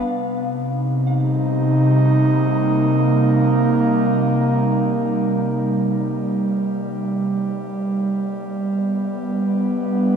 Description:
ambient; free time; C minor; A4 = 441 Hz
airy breathy pad; sustained chords; 0.0-10.2 s; C3 to Eb4; -17 LUFS; right 1 dB; chorus
soft synth bell; arpeggios; 0.0-2.5 s; F5; -35 LUFS; left 5 dB; chorus, ping-pong delay
wet cathedral reverb, RT60 7.0 s; -17 LUFS; side -7 dB against mid
0.1-10.2 A section
0.1 Cm7; 7.3 G
free time

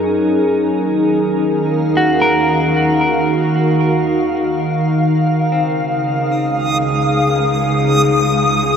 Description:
ambient; free time; Db major; A4 = 440 Hz
glassy FM pad; sustained chords; 0.0-8.8 s; Db3 to F5; -14 LUFS; equal; ensemble chorus, built-in reverb
clear studio cello section; bass; 0.0-8.8 s; Db2 to Gb2; -30 LUFS; right 1 dB
clean electric guitar; arpeggios; 2.0-7.6 s; C4 to Bb4; -20 LUFS; equal; ping-pong delay
backwards swelling texture; texture; 6.5-8.8 s; Eb6; -19 LUFS; equal; built-in reverb
wet huge ambient reverb, RT60 7.6 s; -13 LUFS; side -7 dB against mid
0.0-5.5 A section; 5.5-8.8 B section
fade-out on cello section 0.0-5.5
0.0 Gb6; 0.8 Ebmadd9; 5.5 Dbadd9
free time

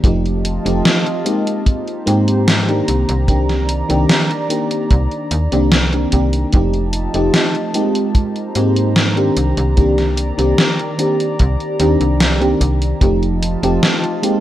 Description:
vaporwave; 74 BPM; 4/4; straight; C minor; A4 = 440 Hz
FM electric piano with soft pad layer; accompaniment; 0.0-14.4 s; Eb3 to G4; -17 LUFS; equal; lush chorus, tape echo
warbly tape-like pad; sustained chords; 0.2-14.4 s; Eb3 to Bb5; -25 LUFS; equal; chorus, built-in reverb
slap-like FM bass; bass; 0.0-13.8 s; F1 to Ab2; -18 LUFS; equal
gated 80s digital drum machine; drums; 0.0-14.4 s; hi-hat, snare drum; -17 LUFS; equal; gated reverb, gated reverb snare
kick drum; drums; 0.0-13.2 s; -13 LUFS; equal
light reverb, small room ambience; rough home demo mix; -13 LUFS; side -13 dB against mid
0.0-14.4 A section
0.0 F7; 1.7 Abmaj9; 2.9 Cm9; 6.5 F7; 8.2 Abmaj9; 9.4 Cm9; 13.0 F7
| 0.04 0.85 1.66 2.47 | 3.29 4.10 4.91 5.72 | 6.53 7.34 8.15 8.96 | 9.77 10.58 11.39 12.20 | 13.02 13.82

